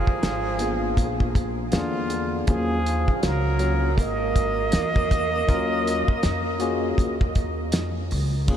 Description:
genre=hip hop, jazz-hop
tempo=80 BPM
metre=4/4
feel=swing 61% on 16ths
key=Eb minor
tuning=A4 = 440 Hz
part: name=trumpet with plunger mute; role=melody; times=0.0-7.7 s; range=F4 to Eb5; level=-28 LUFS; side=equal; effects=diffuse ambient delay
part: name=breathy tenor saxophone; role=second line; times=0.0-7.7 s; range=D3 to Bb3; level=-29 LUFS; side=right 4 dB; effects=none
part: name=upright bass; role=bass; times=0.0-8.6 s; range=Ab1 to F2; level=-27 LUFS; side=equal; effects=none
part: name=cloth-damped thuddy drum kit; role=drums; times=0.1-8.6 s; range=crash cymbal, hi-hat, kick drum, snare drum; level=-26 LUFS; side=equal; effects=none
part: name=barky tine electric piano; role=accompaniment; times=0.6-8.6 s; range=F3 to Bb4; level=-29 LUFS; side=left 3 dB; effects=none
room=moderate huge ambient reverb, RT60 7.6 s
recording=dreamy mix soaked in reverb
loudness=-21 LUFS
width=side -9 dB against mid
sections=0.0-8.5 A section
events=none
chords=0.0 Fdim; 1.0 Bb7b9; 2.5 Ebm11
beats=0.23 0.98 1.73 | 2.48 3.23 3.98 4.73 | 5.48 6.23 6.98 7.73 | 8.48

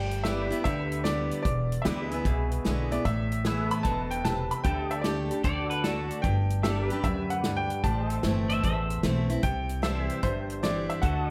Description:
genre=honky-tonk and classic country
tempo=150 BPM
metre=4/4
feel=swing 66% on 8ths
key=G major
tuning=A4 = 440 Hz
part: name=bright upright piano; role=melody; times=0.0-11.3 s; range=C5 to B5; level=-36 LUFS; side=equal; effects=tape echo
part: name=picked steel-string acoustic guitar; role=accompaniment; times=0.0-11.3 s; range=E2 to G4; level=-34 LUFS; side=equal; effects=none
part: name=upright bass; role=bass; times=0.0-11.3 s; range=E1 to D2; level=-34 LUFS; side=equal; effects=none
part: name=natural country drum kit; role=drums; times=0.1-11.2 s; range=hi-hat, kick drum, snare drum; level=-35 LUFS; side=equal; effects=none
part: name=pedal steel guitar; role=sustained chords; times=0.2-11.3 s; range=F#4 to E5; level=-38 LUFS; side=equal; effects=ensemble chorus
part: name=clean electric guitar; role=second line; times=5.4-9.0 s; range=A4 to E5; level=-35 LUFS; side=equal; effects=lush chorus, delay
room=moderate plate reverb, RT60 1.3 s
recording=dreamy mix soaked in reverb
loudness=-28 LUFS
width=mono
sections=0.0-11.3 A section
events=none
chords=0.0 G6; 1.5 E7; 3.1 Asus2; 4.6 Dsus4; 5.4 D; 6.2 G; 7.8 Am; 9.4 C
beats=0.25 0.65 1.05 | 1.45 1.85 2.25 2.65 | 3.05 3.45 3.85 4.25 | 4.65 5.05 5.45 5.85 | 6.25 6.64 7.04 7.44 | 7.84 8.24 8.64 9.04 | 9.44 9.84 10.23 10.63 | 11.03

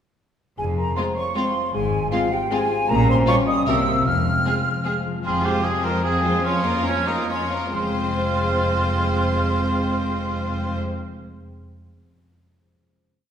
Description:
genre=cinematic, playful, whimsical film cue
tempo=130-157 BPM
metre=3/4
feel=straight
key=F minor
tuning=A4 = 440 Hz
part: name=folk marimba with soft mallets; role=melody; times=0.6-5.0 s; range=F4 to F5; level=-26 LUFS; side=left 3 dB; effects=none
part: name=flute section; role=second line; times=0.6-5.0 s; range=F5 to F6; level=-24 LUFS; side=equal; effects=none
part: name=concert harp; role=arpeggios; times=0.6-11.6 s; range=F2 to F5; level=-29 LUFS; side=left 4 dB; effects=none
part: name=rich chamber double bass section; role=bass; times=0.6-5.6, 7.7-10.8 s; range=F1 to C2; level=-28 LUFS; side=right 2 dB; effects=none
part: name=rich studio cello section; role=bass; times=0.6-10.8 s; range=F2 to C3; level=-28 LUFS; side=right 2 dB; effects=none
part: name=bright chamber violin section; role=melody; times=1.0-10.8 s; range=F4 to Db5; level=-31 LUFS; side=left 1 dB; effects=none
part: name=rich studio violin section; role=second line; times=1.0-10.8 s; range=C4 to F4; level=-31 LUFS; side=left 1 dB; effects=none
part: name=rich chamber viola section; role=accompaniment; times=1.0-10.8 s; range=F3 to Bb3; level=-30 LUFS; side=equal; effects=none
part: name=warm French horn section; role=sustained chords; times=1.0-5.0 s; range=F3 to Db4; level=-28 LUFS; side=left 2 dB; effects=none
part: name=mellow cor anglais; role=second line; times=5.2-10.8 s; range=Db4 to Bb4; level=-24 LUFS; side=right 1 dB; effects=none
room=wet recital hall reverb, RT60 1.7 s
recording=recorded in a church or concert hall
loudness=-19 LUFS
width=side -8 dB against mid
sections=0.6-5.2 A section; 5.2-7.7 coda; 7.7-10.5 final chord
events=slowing down 4.6-7.7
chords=0.6 Fm; 1.7 Fm/Ab; 2.9 Gm7b5/Bb; 3.7 C7; 4.1 Fm; 6.4 Bbm/F; 7.7 Fm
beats=| 0.58 0.97 1.36 | 1.74 2.13 2.51 | 2.90 3.28 3.67 | 4.06 4.45 4.84 | 5.24 5.63 6.03 | 6.43 6.85 7.28 | 7.74 8.19 8.65 | 9.10 9.56 10.01

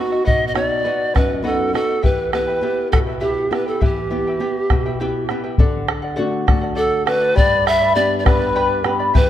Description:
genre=andean folk, Andean ensemble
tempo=68 BPM (dotted quarters)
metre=6/8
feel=straight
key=E minor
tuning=A4 = 440 Hz
part: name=bright polished pan flute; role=melody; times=0.0-9.3 s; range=F#4 to E5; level=-19 LUFS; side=right 1 dB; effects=tape echo
part: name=charango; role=accompaniment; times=0.0-9.3 s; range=E4 to B5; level=-24 LUFS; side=left 2 dB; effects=none
part: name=flamenco guitar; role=accompaniment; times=0.0-9.3 s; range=E2 to G4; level=-24 LUFS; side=left 1 dB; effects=none
part: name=bombo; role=percussion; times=0.1-9.3 s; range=none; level=-18 LUFS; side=left 1 dB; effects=none
room=moderate scoring stage reverb, RT60 1.8 s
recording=close, detailed microphones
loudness=-16 LUFS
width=side -11 dB against mid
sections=0.0-5.6 A section; 5.6-9.3 B section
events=none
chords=0.0 B; 2.0 Em; 5.6 D; 7.4 G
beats=| 0.27 1.15 | 2.04 2.92 | 3.81 4.70 | 5.59 6.48 | 7.37 8.26 | 9.14

